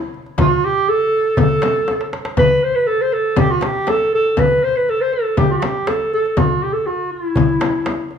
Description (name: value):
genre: Arabic maqam ensemble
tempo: 120 BPM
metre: 4/4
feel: straight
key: E maqam bayati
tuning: A4 = 440 Hz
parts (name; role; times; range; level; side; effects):
- dark clarinet; melody; 0.0-8.1 s; E4 to C5; -16 LUFS; right 1 dB; none
- darbuka; percussion; 0.1-8.2 s; none; -20 LUFS; left 1 dB; none
- frame drum; percussion; 0.4-8.0 s; none; -22 LUFS; left 4 dB; none
room: moderate recital hall reverb, RT60 1.3 s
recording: small room ambience, faint mains hum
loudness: -14 LUFS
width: side -7 dB against mid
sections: 0.0-8.2 A section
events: drum fill 1.9-2.4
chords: none